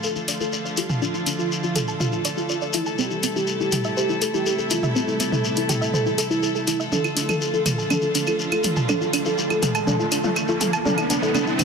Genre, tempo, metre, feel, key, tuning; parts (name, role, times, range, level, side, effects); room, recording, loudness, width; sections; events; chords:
melodic techno; 122 BPM; 4/4; straight; D minor; A4 = 436 Hz
fat analog lead; melody; 0.0-11.5 s; E4 to A4; -26 LUFS; right 2 dB; lush chorus, dub echo
dark chamber string section; sustained chords; 0.0-11.6 s; C3 to A4; -28 LUFS; left 1 dB
soft round pluck; arpeggios; 0.0-11.6 s; C4 to A5; -26 LUFS; equal; chorus, tape echo
shekere; percussion; 0.0-11.6 s; -29 LUFS; left 5 dB
deep house drum kit; drums; 0.3-11.6 s; claves, hi-hat, toms; -25 LUFS; equal
riser; sound effects; 8.4-11.6 s; -30 LUFS; right 2 dB
moderate lush hall reverb, RT60 2.2 s; dense, heavily limited modern master; -20 LUFS; side -5 dB against mid
0.0-11.6 A section
build-up 0.0-11.6; filter sweep on synth arpeggio sound 0.0-11.6; filter sweep on analog synth lead 0.0-11.6; drum fill 6.9-11.6; riser 8.4-11.6
0.0 Dm; 3.0 Am7; 6.9 Dm; 10.9 Am7